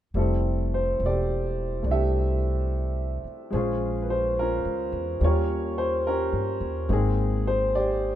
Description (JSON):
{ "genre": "jazz ballad", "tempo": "71 BPM", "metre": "4/4", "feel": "swing 66% on 8ths", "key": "F major", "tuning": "A4 = 440 Hz", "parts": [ { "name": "upright bass", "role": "bass", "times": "0.1-8.2 s", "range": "E1 to G2", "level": "-27 LUFS", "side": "equal", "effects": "none" }, { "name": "warm upright piano", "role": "accompaniment", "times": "0.2-8.2 s", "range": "G3 to E5", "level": "-26 LUFS", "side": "equal", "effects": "none" } ], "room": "light reverb", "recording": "minimal, uncompressed stereo recording", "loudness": "-23 LUFS", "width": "side -12 dB against mid", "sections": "0.1-8.2 A section", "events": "none", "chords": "0.1 Fmaj9; 3.5 Bbm7; 5.2 Eb7; 6.9 Abmaj7" }